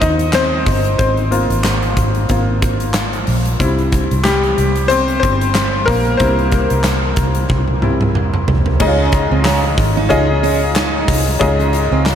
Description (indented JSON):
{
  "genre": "piano-driven pop",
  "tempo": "92 BPM",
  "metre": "4/4",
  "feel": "swing 56% on 16ths",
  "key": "unclear",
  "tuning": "A4 = 444 Hz",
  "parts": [
    { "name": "bright upright piano", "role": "accompaniment", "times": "0.0-12.2 s", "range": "Ab2 to Eb5", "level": "-16 LUFS", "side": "left 2 dB", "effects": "none" },
    { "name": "vintage muted fingered electric bass", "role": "bass", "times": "0.0-12.2 s", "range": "G1 to Eb2", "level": "-18 LUFS", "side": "equal", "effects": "none" },
    { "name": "huge arena drum kit", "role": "drums", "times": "0.0-12.2 s", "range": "crash cymbal, handclaps, hi-hat, kick drum, snare drum, toms", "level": "-18 LUFS", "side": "right 1 dB", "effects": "none" },
    { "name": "fingerpicked steel-string acoustic guitar", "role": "riff", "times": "8.8-12.1 s", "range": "C4 to Eb4", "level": "-21 LUFS", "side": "right 11 dB", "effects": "none" }
  ],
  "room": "moderate huge ambient reverb, RT60 7.1 s",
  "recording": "dreamy mix soaked in reverb",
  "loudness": "-13 LUFS",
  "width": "side -9 dB against mid",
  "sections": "0.0-8.8 A section; 8.8-12.2 B section",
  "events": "upright piano solo 0.0-8.8; drum fill 7.5-8.8",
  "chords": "0.0 Ab6; 3.6 C; 8.8 Dbadd9",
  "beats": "0.34 | 0.99 1.64 2.29 2.94 | 3.60 4.25 4.90 5.55 | 6.20 6.85 7.50 8.15 | 8.80 9.46 10.11 10.76 | 11.41 12.06"
}